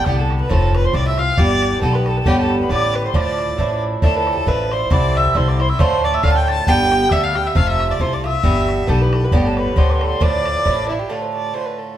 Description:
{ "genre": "celtic folk, Celtic polka", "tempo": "136 BPM", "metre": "2/4", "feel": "swing 55% on 8ths", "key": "D dorian", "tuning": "A4 = 439 Hz", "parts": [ { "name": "dark fiddle", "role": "melody", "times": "0.0-12.0 s", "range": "E4 to A5", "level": "-22 LUFS", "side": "right 1 dB", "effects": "none" }, { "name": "mellow wooden whistle", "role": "second line", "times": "0.0-10.9 s", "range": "G5 to A6", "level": "-24 LUFS", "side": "left 3 dB", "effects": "none" }, { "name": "Irish bouzouki", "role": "accompaniment", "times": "0.0-12.0 s", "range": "G2 to G4", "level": "-21 LUFS", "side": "right 3 dB", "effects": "none" }, { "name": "upright bass", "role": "bass", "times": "0.1-11.0 s", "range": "F1 to D2", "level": "-19 LUFS", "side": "left 1 dB", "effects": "none" }, { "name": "bodhran", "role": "percussion", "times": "0.1-10.8 s", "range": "none", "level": "-21 LUFS", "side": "equal", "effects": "none" } ], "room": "wet stone room reverb, RT60 0.9 s", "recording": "band playing live in one room", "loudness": "-15 LUFS", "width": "side -11 dB against mid", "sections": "0.0-4.0 A section; 4.0-11.1 A section", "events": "none", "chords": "0.0 G; 0.5 F; 1.4 Em/G; 2.3 Gadd9; 3.1 Dmadd9; 4.9 Cadd9; 5.8 Dm; 6.7 G; 7.6 F; 8.4 Em/G; 9.3 Gadd9; 10.2 Dmadd9; 11.1 Dm" }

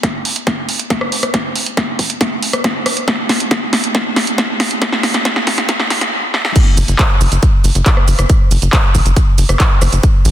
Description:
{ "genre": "uplifting trance", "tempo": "138 BPM", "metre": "4/4", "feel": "straight", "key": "F# minor", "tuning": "A4 = 440 Hz", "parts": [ { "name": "electronic kick drum", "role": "drums", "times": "0.0-10.1 s", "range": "none", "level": "-13 LUFS", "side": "equal", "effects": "high-pass filter on kick" }, { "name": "punchy analog drum machine", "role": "drums", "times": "0.0-10.3 s", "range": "crash cymbal, handclaps, hi-hat, rim click, shaker, snare drum", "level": "-15 LUFS", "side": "equal", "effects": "none" }, { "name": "tight sequencer bass", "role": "bass", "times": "6.8-10.3 s", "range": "F#1 to A1", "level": "-13 LUFS", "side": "equal", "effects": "sidechain pumping" } ], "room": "light reverb", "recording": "dense, heavily limited modern master, high-pass filter", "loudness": "-12 LUFS", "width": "side -12 dB against mid", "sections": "0.0-6.6 A section; 6.6-10.3 B section", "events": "build-up 0.0-6.6; drum fill 0.0-6.1, 6.3; drop 6.6-10.3", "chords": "none" }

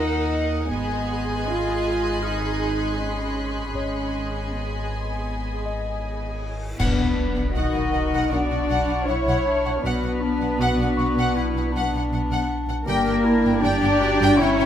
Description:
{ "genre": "cinematic, suspense film score", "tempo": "79 BPM", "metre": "4/4", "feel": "straight", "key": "unclear", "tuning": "A4 = 440 Hz", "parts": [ { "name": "warm symphonic violin section", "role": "melody", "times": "0.0-14.7 s", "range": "F#5 to G#5", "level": "-30 LUFS", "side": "left 1 dB", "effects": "none" }, { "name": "warm symphonic violin section", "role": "second line", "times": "0.0-14.7 s", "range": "D4 to D#5", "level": "-30 LUFS", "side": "equal", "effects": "none" }, { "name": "dark symphonic viola section", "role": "accompaniment", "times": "0.0-14.7 s", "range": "D#3 to C#5", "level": "-28 LUFS", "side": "right 1 dB", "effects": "none" }, { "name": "warm symphonic cello section", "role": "bass", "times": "0.0-14.7 s", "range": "B3 to D#5", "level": "-28 LUFS", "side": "equal", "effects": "none" }, { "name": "warm symphonic double bass section", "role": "bass", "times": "0.0-14.7 s", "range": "G1 to D#2", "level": "-30 LUFS", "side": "right 2 dB", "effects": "none" }, { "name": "punchy sub bass", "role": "drone", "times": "0.0-14.7 s", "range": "G1 to D#2", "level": "-30 LUFS", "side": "equal", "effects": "none" }, { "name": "celesta", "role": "texture", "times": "0.0-14.7 s", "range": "C#5 to E#6", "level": "-36 LUFS", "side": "left 5 dB", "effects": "none" }, { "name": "warm symphonic violin section", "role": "texture", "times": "0.0-14.7 s", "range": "Bb5 to G#6", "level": "-38 LUFS", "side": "left 2 dB", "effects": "none" }, { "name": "cymbal swell, clash cymbals and concert bass drum", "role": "percussion", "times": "3.8-8.3 s", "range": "none", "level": "-32 LUFS", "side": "equal", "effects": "none" }, { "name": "reverse cymbal and sub drop", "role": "sound effects", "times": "6.8-9.8 s", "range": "none", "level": "-31 LUFS", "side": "equal", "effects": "none" }, { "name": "mellow French horn section", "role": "sustained chords", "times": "6.8-14.7 s", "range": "Bb3 to C#5", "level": "-27 LUFS", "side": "left 4 dB", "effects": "none" }, { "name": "warm clarinet", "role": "second line", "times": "8.3-14.7 s", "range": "B3 to G4", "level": "-29 LUFS", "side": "left 1 dB", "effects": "none" } ], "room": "moderate scoring stage reverb, RT60 2.1 s", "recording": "none", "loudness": "-20 LUFS", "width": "side -10 dB against mid", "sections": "0.0-6.8 A section; 6.8-14.7 A section", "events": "band accent 6.8-7.5; impact 6.8-9.8; reverse cymbal 6.8", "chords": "0.0 D#m; 0.7 G#m; 6.8 Bm; 12.9 Gm" }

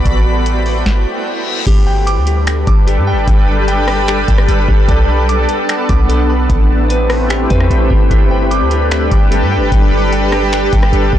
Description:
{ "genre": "hip hop, atmospheric cloud-rap", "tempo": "149 BPM", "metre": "4/4", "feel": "half-time", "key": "G major", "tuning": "A4 = 443 Hz", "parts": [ { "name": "shimmering ambient pad", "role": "sustained chords", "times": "0.0-11.2 s", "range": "G3 to B4", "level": "-16 LUFS", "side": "equal", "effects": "chorus, built-in reverb, sidechain pumping" }, { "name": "clean 808-style bass", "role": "bass", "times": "0.0-11.2 s", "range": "G1 to G2", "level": "-14 LUFS", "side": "equal", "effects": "none" }, { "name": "booming analog drum machine", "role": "drums", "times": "0.1-11.2 s", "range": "crash cymbal, finger snaps, hi-hat, kick drum, rim click, snare drum", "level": "-14 LUFS", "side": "equal", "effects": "overdrive, vintage 12-bit sampler grit, soft clipping on snare" }, { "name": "reverse cymbal", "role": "sound effects", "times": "1.1-1.7 s", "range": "none", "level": "-24 LUFS", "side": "left 8 dB", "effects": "none" }, { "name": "clean electric guitar", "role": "arpeggios", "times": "1.7-11.2 s", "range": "G4 to D6", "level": "-22 LUFS", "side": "left 2 dB", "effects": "digital delay" } ], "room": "little or no reverb", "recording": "blown-out, overdriven recording, overdrive", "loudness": "-10 LUFS", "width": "side -11 dB against mid", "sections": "0.0-1.7 A section; 1.7-11.2 B section", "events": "stop 0.9-1.7; reverse cymbal 1.1-1.7", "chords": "0.1 Am9; 1.7 G; 4.9 Bm7; 6.5 Am9; 8.1 G" }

